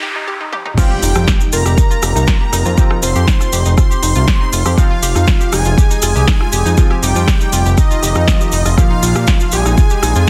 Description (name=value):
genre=melodic techno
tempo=120 BPM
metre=4/4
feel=straight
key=F minor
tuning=A4 = 440 Hz
part: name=analog pluck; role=arpeggios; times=0.0-10.2 s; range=Eb4 to G4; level=-26 LUFS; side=equal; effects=chorus, sidechain pumping, tape echo
part: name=noise sweep and impact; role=sound effects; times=0.0-2.8 s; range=none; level=-26 LUFS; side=equal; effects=none
part: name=techno drum kit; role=drums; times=0.5-10.3 s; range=crash cymbal, hi-hat, rim click, snare drum, toms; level=-23 LUFS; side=equal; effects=small room ambience
part: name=fat analog lead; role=melody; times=0.8-10.3 s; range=Eb4 to C5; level=-24 LUFS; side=equal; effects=subtle chorus, sidechain pumping, tape echo
part: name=airy dreamy lead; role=second line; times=0.8-10.3 s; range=Eb5 to C6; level=-26 LUFS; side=equal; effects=chorus, sidechain pumping, tape echo
part: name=synth brass stab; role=stabs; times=0.8-10.3 s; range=Bb2 to F4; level=-28 LUFS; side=equal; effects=none
part: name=electronic kick drum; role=drums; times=0.8-10.3 s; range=none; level=-15 LUFS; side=equal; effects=small room ambience
part: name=cabasa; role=percussion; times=0.8-10.3 s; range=none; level=-25 LUFS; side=equal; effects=none
part: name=fat analog bass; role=bass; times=1.0-10.3 s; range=F1 to Bb2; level=-16 LUFS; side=equal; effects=tube saturation, sidechain pumping, high-pass filter
room=light reverb, digital ambience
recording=dense, heavily limited modern master, high-pass filter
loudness=-13 LUFS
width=mono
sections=0.8-10.3 A section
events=break 0.0-0.8; noise sweep 0.0-0.8; drum fill 0.5; drop 0.8-10.3; impact 0.8-2.8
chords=0.0 N.C.; 0.8 Fm; 8.8 Bb5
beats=0.28 | 0.78 1.28 1.78 2.28 | 2.78 3.28 3.78 4.28 | 4.78 5.28 5.78 6.28 | 6.78 7.28 7.78 8.28 | 8.78 9.28 9.78 10.28